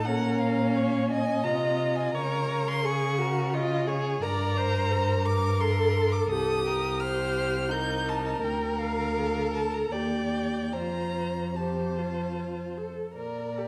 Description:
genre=classical, slow romantic movement for string quartet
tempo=68-89 BPM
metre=3/4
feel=rubato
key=Bb minor, Bb major from 4.2 s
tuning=A4 = 440 Hz
part: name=warm violin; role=melody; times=0.0-13.7 s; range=D5 to G6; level=-36 LUFS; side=equal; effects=none
part: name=warm violin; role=second line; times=0.0-13.7 s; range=Db4 to D5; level=-33 LUFS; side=equal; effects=none
part: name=rich viola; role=accompaniment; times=0.0-13.7 s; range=F4 to Eb5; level=-34 LUFS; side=equal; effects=none
part: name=rich cello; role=bass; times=0.0-13.7 s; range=C2 to Db3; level=-32 LUFS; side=equal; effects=none
room=wet recital hall reverb, RT60 1.4 s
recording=dark, warm production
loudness=-28 LUFS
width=mono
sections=0.0-13.2 A section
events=none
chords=0.1 Bbm; 2.1 Bbm/Db; 4.2 Gm; 6.3 Cm7; 8.4 Bb/D; 9.9 Ebmaj7; 10.7 F; 13.2 Bb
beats=| 0.06 0.76 1.44 | 2.14 2.85 3.54 | 4.22 4.91 5.59 | 6.30 7.00 7.70 | 8.43 9.16 9.91 | 10.73 11.55 12.36 | 13.17

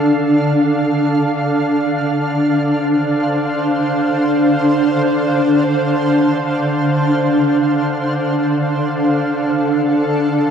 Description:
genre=ambient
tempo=free time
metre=none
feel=none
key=D minor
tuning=A4 = 439 Hz
part: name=shimmering ambient pad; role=solo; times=0.0-10.5 s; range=D3 to F5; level=-14 LUFS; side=equal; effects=chorus, built-in reverb, tape echo
room=wet cathedral reverb, RT60 5.2 s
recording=in a vast, echoing space, nothing above 10.6 kHz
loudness=-14 LUFS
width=side -7 dB against mid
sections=0.0-10.5 A section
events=none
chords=0.0 Dm7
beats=free time

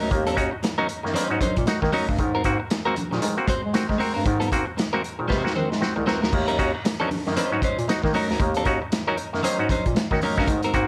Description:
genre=funk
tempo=116 BPM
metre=4/4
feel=swing 60% on 16ths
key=Eb dorian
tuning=A4 = 441 Hz
part: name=clean electric guitar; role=accompaniment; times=0.0-10.8 s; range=Gb3 to C5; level=-30 LUFS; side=equal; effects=spring reverb
part: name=mellow bass clarinet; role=bass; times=0.0-10.9 s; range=C2 to Ab3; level=-29 LUFS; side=equal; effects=none
part: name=auto-wah clav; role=stabs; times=0.1-10.9 s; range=Ab2 to Gb4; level=-29 LUFS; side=equal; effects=none
part: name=vintage drum kit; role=drums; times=0.1-10.9 s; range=crash cymbal, hi-hat, kick drum, snare drum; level=-29 LUFS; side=equal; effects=none
part: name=congas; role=percussion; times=0.1-10.6 s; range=none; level=-35 LUFS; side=equal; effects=none
room=light reverb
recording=none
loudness=-23 LUFS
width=mono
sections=0.0-6.3 A section; 6.3-10.9 B section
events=drum fill 5.3-6.3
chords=0.0 Ebm7; 2.2 Ab9; 6.3 Ebm7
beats=| 0.11 0.63 1.15 1.67 | 2.19 2.70 3.22 3.74 | 4.26 4.77 5.29 5.81 | 6.33 6.85 7.37 7.88 | 8.40 8.92 9.44 9.96 | 10.48

